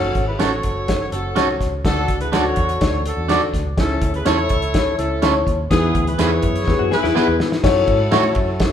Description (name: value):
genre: uptempo 1960s-style soul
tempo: 124 BPM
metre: 4/4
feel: straight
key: unclear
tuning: A4 = 440 Hz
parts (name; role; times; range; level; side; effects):
- warm horn section; second line; 0.0-8.7 s; B3 to C#5; -23 LUFS; right 1 dB; none
- dark upright piano; accompaniment; 0.0-8.7 s; C#3 to F#5; -22 LUFS; left 5 dB; none
- vintage muted fingered electric bass; bass; 0.0-8.7 s; F#1 to E3; -24 LUFS; equal; none
- warm soul drum kit; drums; 0.1-8.7 s; crash cymbal, hi-hat, kick drum, ride cymbal, snare drum; -22 LUFS; equal; none
- electric guitar at the edge of break-up; stabs; 0.4-8.2 s; A3 to D5; -21 LUFS; right 5 dB; none
- vintage hollow-body jazz guitar; riff; 6.8-7.6 s; E4 to G#4; -22 LUFS; left 6 dB; none
room: wet large studio reverb, RT60 1.2 s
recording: band playing live in one room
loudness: -16 LUFS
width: side -9 dB against mid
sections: 0.0-7.6 A section; 7.6-8.7 B section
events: drum fill 6.7-7.6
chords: 0.0 F#m; 1.8 D; 3.8 A/C#; 5.7 E; 7.6 F#m7